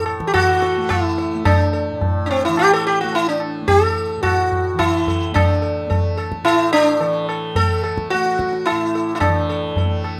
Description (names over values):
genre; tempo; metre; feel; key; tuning
indian classical, Hindustani; 108 BPM; 7/4; straight; unclear; A4 = 440 Hz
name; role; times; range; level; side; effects
sitar; melody; 0.0-10.2 s; C4 to A4; -20 LUFS; equal; none
tanpura; drone; 0.0-10.2 s; A2 to A3; -30 LUFS; equal; none
tabla; percussion; 0.1-10.2 s; none; -24 LUFS; equal; none
room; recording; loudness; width
moderate small room reverb, RT60 0.6 s; none; -18 LUFS; mono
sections
0.0-10.2 A section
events
none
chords
none